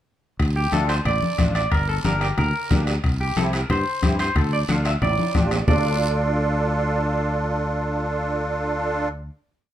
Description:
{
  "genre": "latin, cumbia",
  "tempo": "182 BPM",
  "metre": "4/4",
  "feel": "straight",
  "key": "D minor",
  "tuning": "A4 = 441 Hz",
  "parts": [
    { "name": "fingered electric bass", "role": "bass", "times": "0.4-9.3 s", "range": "G1 to G2", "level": "-24 LUFS", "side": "equal", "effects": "none" },
    { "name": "bombo", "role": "percussion", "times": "0.4-5.8 s", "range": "none", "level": "-25 LUFS", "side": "left 1 dB", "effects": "none" },
    { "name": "guiro", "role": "percussion", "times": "0.4-5.8 s", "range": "none", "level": "-35 LUFS", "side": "right 3 dB", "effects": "none" },
    { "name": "timbales", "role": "percussion", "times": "0.4-5.8 s", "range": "none", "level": "-34 LUFS", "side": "right 6 dB", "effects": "none" },
    { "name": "clean electric guitar", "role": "melody", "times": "0.6-9.3 s", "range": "G4 to F5", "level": "-25 LUFS", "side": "equal", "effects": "spring reverb" },
    { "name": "musette accordion", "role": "accompaniment", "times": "0.7-9.1 s", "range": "A3 to A4", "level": "-25 LUFS", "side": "right 2 dB", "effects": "none" },
    { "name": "congas", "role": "percussion", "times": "0.7-5.8 s", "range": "none", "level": "-26 LUFS", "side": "left 2 dB", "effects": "none" }
  ],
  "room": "light reverb",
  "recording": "none",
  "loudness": "-19 LUFS",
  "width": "side -11 dB against mid",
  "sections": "0.4-5.7 A section; 5.7-8.3 final chord",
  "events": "drum fill 5.0-5.7",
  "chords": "0.4 Dm; 1.7 Gm; 3.0 C; 4.4 Dm"
}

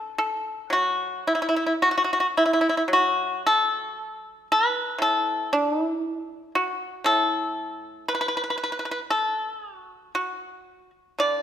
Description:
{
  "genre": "chinese traditional, Chinese solo plucked strings",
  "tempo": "54-59 BPM",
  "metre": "4/4",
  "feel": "rubato",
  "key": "unclear",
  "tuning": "A4 = 436 Hz",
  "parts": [
    { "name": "pipa", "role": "solo", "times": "0.0-11.4 s", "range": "A2 to D5", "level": "-22 LUFS", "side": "equal", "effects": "none" }
  ],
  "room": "moderate scoring stage reverb, RT60 1.7 s",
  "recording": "minimal, uncompressed stereo recording",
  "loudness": "-22 LUFS",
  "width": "side -10 dB against mid",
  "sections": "0.0-11.4 A section",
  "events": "none",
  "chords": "none"
}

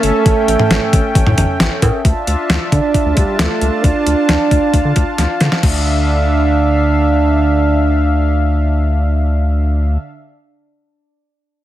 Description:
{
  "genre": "synth-pop",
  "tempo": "134 BPM",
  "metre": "4/4",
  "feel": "straight",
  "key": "D harmonic minor",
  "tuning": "A4 = 440 Hz",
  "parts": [
    { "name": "mellow French horn", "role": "melody", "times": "0.0-10.0 s", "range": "G3 to D4", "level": "-17 LUFS", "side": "right 3 dB", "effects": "ping-pong delay" },
    { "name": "brassy analog pad", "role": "sustained chords", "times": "0.0-10.0 s", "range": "D3 to A5", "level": "-19 LUFS", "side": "left 1 dB", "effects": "chorus" },
    { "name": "rubbery square bass", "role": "bass", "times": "0.0-10.0 s", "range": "G1 to D3", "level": "-15 LUFS", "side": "left 1 dB", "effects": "none" },
    { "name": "detuned 8-bit digital drum machine", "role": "drums", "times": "0.0-5.7 s", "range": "cowbell, crash cymbal, hi-hat, kick drum, snare drum, toms", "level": "-15 LUFS", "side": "equal", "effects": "overdrive" }
  ],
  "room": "light reverb",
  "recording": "heavily compressed radio sound",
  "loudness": "-12 LUFS",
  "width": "side -13 dB against mid",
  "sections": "0.0-2.0 A section; 2.0-5.6 B section; 5.6-9.2 C section",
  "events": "drum fill 5.2-5.6",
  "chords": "0.0 A; 2.0 Dmadd9"
}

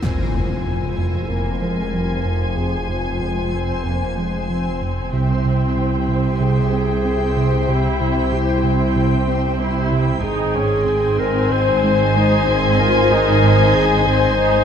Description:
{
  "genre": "cinematic",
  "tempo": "94 BPM",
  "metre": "4/4",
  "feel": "straight",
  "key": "F harmonic minor",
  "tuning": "A4 = 440 Hz",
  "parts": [
    { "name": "muted studio violin section", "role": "melody", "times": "0.0-14.6 s", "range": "G5 to Ab5", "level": "-26 LUFS", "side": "left 4 dB", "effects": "none" },
    { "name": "dark clarinet", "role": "second line", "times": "0.0-14.6 s", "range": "E4 to C5", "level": "-23 LUFS", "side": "left 3 dB", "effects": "none" },
    { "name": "muted chamber violin section", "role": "second line", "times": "0.0-14.6 s", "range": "C5 to Ab5", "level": "-28 LUFS", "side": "left 1 dB", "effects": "none" },
    { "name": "backwards swelling texture", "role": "sustained chords", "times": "0.0-14.6 s", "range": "Ab4 to Ab5", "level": "-33 LUFS", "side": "left 1 dB", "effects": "built-in reverb" },
    { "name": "warm French horn section", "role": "sustained chords", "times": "0.0-14.6 s", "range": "C4 to C5", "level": "-28 LUFS", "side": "left 6 dB", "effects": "none" },
    { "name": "round analog bass", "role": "riff", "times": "0.0-14.6 s", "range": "F2 to C4", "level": "-24 LUFS", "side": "right 2 dB", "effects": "none" },
    { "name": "muted chamber cello section", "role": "bass", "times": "0.0-14.6 s", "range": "F2 to C3", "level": "-24 LUFS", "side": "right 3 dB", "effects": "none" },
    { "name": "muted symphonic double bass section", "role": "bass", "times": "0.0-14.6 s", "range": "F1 to C2", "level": "-24 LUFS", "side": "right 2 dB", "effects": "none" },
    { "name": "warm sub bass", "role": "drone", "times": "0.0-14.6 s", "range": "F1 to C2", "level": "-28 LUFS", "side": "left 1 dB", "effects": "none" },
    { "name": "impact", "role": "sound effects", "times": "0.0-2.6 s", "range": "none", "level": "-26 LUFS", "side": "left 1 dB", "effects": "none" },
    { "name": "muted chamber viola section", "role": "accompaniment", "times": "1.3-14.6 s", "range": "F3 to G4", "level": "-24 LUFS", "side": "right 2 dB", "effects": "none" }
  ],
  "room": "moderate scoring stage reverb, RT60 1.6 s",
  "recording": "close, detailed microphones",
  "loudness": "-16 LUFS",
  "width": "side -8 dB against mid",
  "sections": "0.0-14.6 A section",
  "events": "impact 0.0-2.6",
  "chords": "0.0 Fm; 5.1 C; 10.2 Ab"
}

